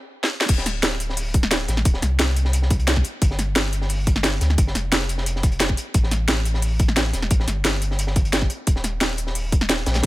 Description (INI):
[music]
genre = liquid drum and bass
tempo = 176 BPM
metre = 4/4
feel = straight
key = D minor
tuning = A4 = 441 Hz
[part]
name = drum and bass drum kit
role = drums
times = 0.2-10.1 s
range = crash cymbal, hi-hat, snare drum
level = -23 LUFS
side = equal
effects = none
[part]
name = warm sub bass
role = bass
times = 0.5-10.1 s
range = D1 to D2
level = -23 LUFS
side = equal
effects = none
[part]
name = crunchy breakbeat drum kit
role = drums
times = 0.5-10.1 s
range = hi-hat, snare drum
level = -29 LUFS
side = equal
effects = high-pass filter on hats, high-pass filter on snare, high-pass filter on room
[part]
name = electronic kick drum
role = drums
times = 0.5-10.1 s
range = none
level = -19 LUFS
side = equal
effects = none
[sound]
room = small room ambience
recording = high-pass filter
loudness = -18 LUFS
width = side -17 dB against mid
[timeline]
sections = 0.5-10.1 A section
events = stop 0.0-0.5; drum fill 0.2; drop 0.5-10.1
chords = none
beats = 0.15 | 0.49 0.83 1.17 1.51 | 1.85 2.19 2.54 2.88 | 3.22 3.56 3.90 4.24 | 4.58 4.92 5.26 5.60 | 5.94 6.29 6.63 6.97 | 7.31 7.65 7.99 8.33 | 8.67 9.01 9.35 9.69 | 10.04